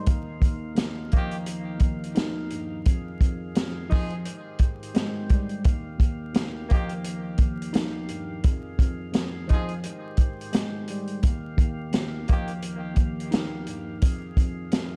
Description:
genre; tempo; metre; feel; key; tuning
hip hop, boom-bap hip-hop; 86 BPM; 4/4; swing 60% on 16ths; Eb major; A4 = 440 Hz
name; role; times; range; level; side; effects
mellow tine electric piano; accompaniment; 0.0-15.0 s; Eb2 to Eb4; -35 LUFS; equal; high-pass filter, low-pass filter
percussive tonewheel organ; sustained chords; 0.0-15.0 s; Eb2 to F5; -42 LUFS; equal; slow rotary speaker, high-pass filter, low-pass filter
vintage drum kit; drums; 0.1-14.9 s; hi-hat, kick drum, snare drum; -25 LUFS; equal; none
warm horn section; stabs; 1.1-12.5 s; Eb3 to Ab4; -41 LUFS; equal; high-pass filter, low-pass filter, delay
room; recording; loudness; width
light reverb, studio reverb; dark, warm production, vinyl crackle; -26 LUFS; mono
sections
0.0-15.0 A section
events
none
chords
0.1 Ebadd9; 2.9 Fm7; 4.3 Abmaj7; 5.7 Ebadd9; 8.4 Fm7; 9.8 Abmaj7; 11.2 Ebadd9; 14.0 Fm7

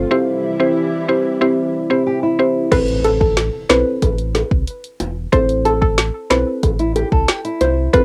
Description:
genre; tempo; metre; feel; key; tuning
dancehall; 92 BPM; 4/4; straight; A minor; A4 = 440 Hz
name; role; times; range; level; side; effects
lush unison pad; sustained chords; 0.0-2.7 s; C3 to E4; -26 LUFS; equal; chorus, sidechain pumping, cassette tape
sub bass with octave; bass; 0.0-8.0 s; E1 to C2; -24 LUFS; equal; none
mallet-like synth pluck; accompaniment; 0.1-8.0 s; C4 to C5; -20 LUFS; equal; chorus, sidechain pumping, cassette tape
nylon-string guitar; arpeggios; 1.9-2.7, 6.8-7.9 s; E4 to A4; -24 LUFS; equal; cassette tape
soft round pluck; melody; 2.7-8.0 s; A4 to C5; -21 LUFS; equal; chorus, cassette tape, tape echo
deep house drum kit; drums; 2.7-8.0 s; crash cymbal, hi-hat, kick drum, snare drum; -20 LUFS; equal; cassette tape
bongos; percussion; 2.7-8.0 s; none; -25 LUFS; equal; none
impact; sound effects; 2.9-5.3 s; none; -35 LUFS; equal; none
room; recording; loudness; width
light reverb; home recording on cassette; -17 LUFS; mono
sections
0.0-2.7 A section; 2.7-8.0 B section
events
impact 2.7-5.3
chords
0.1 C; 2.7 Am

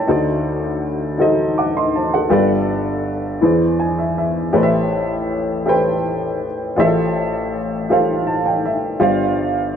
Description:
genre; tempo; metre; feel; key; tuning
gospel; 54 BPM (dotted quarters); 6/8; straight; unclear; A4 = 445 Hz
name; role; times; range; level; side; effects
dark upright piano; solo; 0.0-9.8 s; G1 to D6; -16 LUFS; equal; slapback echo
room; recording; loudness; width
light reverb; none; -16 LUFS; side -8 dB against mid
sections
0.0-9.8 A section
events
upright piano fill 3.4-4.5, 7.9-9.0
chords
0.1 D7b9; 2.3 G9; 3.4 E7b13; 4.5 Am9; 6.8 Fmaj9/A; 9.0 G7sus4

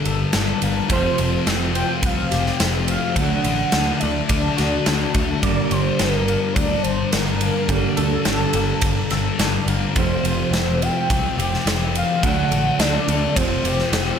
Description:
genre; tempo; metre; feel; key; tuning
rock, shoegaze and dream pop; 106 BPM; 4/4; straight; G minor; A4 = 442 Hz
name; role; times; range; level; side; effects
warm velvety synth lead; melody; 0.0-14.2 s; A4 to G5; -25 LUFS; equal; chorus, slapback echo
fingerpicked twelve-string acoustic guitar; arpeggios; 0.0-14.2 s; F3 to A4; -30 LUFS; left 10 dB; analog chorus, slapback echo
overdriven semi-hollow guitar; riff; 0.0-14.2 s; F2 to D4; -26 LUFS; right 10 dB; reverse reverb
thick fuzz guitar; riff; 0.0-14.2 s; F2 to D4; -24 LUFS; left 8 dB; distortion, lush chorus
picked electric bass; bass; 0.1-14.1 s; F1 to D2; -24 LUFS; equal; none
big rock drum kit; drums; 0.1-14.1 s; kick drum, ride cymbal, snare drum; -23 LUFS; equal; none
room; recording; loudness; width
light reverb, studio ambience; none; -17 LUFS; side -7 dB against mid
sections
0.0-14.2 A section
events
none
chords
0.0 Gmadd9; 0.9 Fadd9; 3.2 D; 5.4 Gmadd9; 10.0 Fadd9; 12.2 D; 13.4 Fadd9

